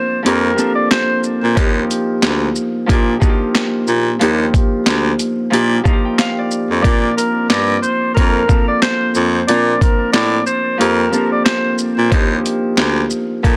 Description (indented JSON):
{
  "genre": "hip hop, boom-bap hip-hop",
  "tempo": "91 BPM",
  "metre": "4/4",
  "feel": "swing 57% on 16ths",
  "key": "Bb major",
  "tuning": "A4 = 442 Hz",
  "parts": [
    { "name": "breathy tenor saxophone", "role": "melody", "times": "0.0-1.2, 6.8-11.7 s", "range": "Bb4 to D5", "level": "-21 LUFS", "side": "equal", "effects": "high-pass filter, low-pass filter, digital delay" },
    { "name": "Celtic harp", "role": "accompaniment", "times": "0.0-13.6 s", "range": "F3 to Bb5", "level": "-20 LUFS", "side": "equal", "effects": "high-pass filter, low-pass filter" },
    { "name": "raspy baritone saxophone", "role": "bass", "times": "0.3-13.6 s", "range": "D2 to Bb2", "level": "-19 LUFS", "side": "equal", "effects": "none" },
    { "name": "boom bap sampler-style drum kit", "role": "drums", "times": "0.3-13.6 s", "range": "handclaps, hi-hat, kick drum, shaker, snare drum", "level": "-18 LUFS", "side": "equal", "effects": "none" }
  ],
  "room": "little or no reverb",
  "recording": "dense, heavily limited modern master",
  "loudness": "-15 LUFS",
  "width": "mono",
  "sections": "0.0-13.6 A section",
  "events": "none",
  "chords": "0.0 Bbmaj9; 1.6 Ebmaj9; 6.8 Bbmaj9; 12.1 Ebmaj9"
}